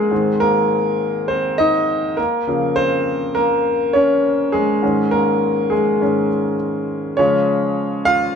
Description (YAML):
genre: pop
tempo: 102 BPM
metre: 4/4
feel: straight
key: Db major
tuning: A4 = 445 Hz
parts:
  - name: clear grand piano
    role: solo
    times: 0.0-8.4 s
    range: Ab2 to F5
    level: -15 LUFS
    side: equal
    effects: none
room: moderate stone room reverb, RT60 1.1 s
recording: band playing live in one room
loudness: -15 LUFS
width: side -7 dB against mid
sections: 0.0-7.2 A section; 7.2-8.4 B section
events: grand piano solo 0.0-7.2, 7.2-8.4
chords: 0.1 Ab; 2.2 Db6; 4.8 Absus4; 7.2 Db